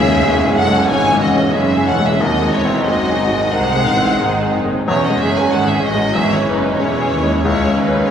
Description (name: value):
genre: classical, romantic movement for piano and orchestra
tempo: 91 BPM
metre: 4/4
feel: rubato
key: C# minor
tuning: A4 = 440 Hz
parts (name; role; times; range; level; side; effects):
- clear grand piano; melody; 0.0-8.1 s; C#2 to G#4; -18 LUFS; left 2 dB; none
- rich studio violin section; melody; 0.0-8.1 s; B4 to G#5; -21 LUFS; left 2 dB; none
- mellow large flute ensemble; second line; 0.0-8.1 s; B4 to G#5; -23 LUFS; right 2 dB; none
- warm studio violin section; second line; 0.0-8.1 s; D#4 to C#5; -24 LUFS; left 2 dB; none
- warm studio viola section; accompaniment; 0.0-8.1 s; D#3 to E4; -22 LUFS; right 2 dB; none
- warm French horn section; sustained chords; 0.0-8.1 s; G#3 to C#4; -24 LUFS; equal; none
- warm studio cello section; bass; 0.0-8.1 s; C#2 to B#2; -26 LUFS; right 2 dB; none
- warm symphonic double bass section; bass; 0.0-8.1 s; E1 to D#2; -26 LUFS; right 2 dB; none
- warm tuba; bass; 0.0-8.1 s; E1 to D#2; -25 LUFS; right 3 dB; none
room: wet recital hall reverb, RT60 1.6 s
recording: heard from further back in the room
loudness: -13 LUFS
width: side -8 dB against mid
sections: 0.0-8.1 A section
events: none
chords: 0.0 C#m; 2.2 G#7; 4.9 C#m/E; 7.4 C#m